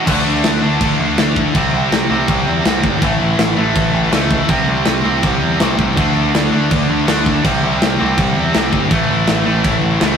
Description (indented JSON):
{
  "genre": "heavy metal",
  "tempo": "163 BPM",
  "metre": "4/4",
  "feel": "straight",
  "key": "unclear",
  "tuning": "A4 = 441 Hz",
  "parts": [
    { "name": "high-gain distorted guitar", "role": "riff", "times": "0.0-10.2 s", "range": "A2 to D4", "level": "-16 LUFS", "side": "equal", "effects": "distortion" },
    { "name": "growling picked electric bass", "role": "bass", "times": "0.1-10.2 s", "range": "G1 to E2", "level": "-19 LUFS", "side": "equal", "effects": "overdrive" },
    { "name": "tight metal drum kit", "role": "drums", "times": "0.1-10.1 s", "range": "crash cymbal, kick drum, snare drum", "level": "-17 LUFS", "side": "equal", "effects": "none" }
  ],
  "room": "light reverb",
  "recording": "rough rehearsal-room recording, warm saturation",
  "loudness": "-12 LUFS",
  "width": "side -7 dB against mid",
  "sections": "0.1-10.2 A section",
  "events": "none",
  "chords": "0.1 D5; 1.5 C5; 3.0 A; 4.5 C5; 6.0 D5; 7.4 C5; 8.9 A",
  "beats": "| 0.07 0.44 0.81 1.18 | 1.55 1.92 2.29 2.65 | 3.02 3.39 3.76 4.13 | 4.50 4.87 5.24 5.60 | 5.97 6.34 6.71 7.08 | 7.45 7.82 8.19 8.55 | 8.92 9.29 9.66 10.03"
}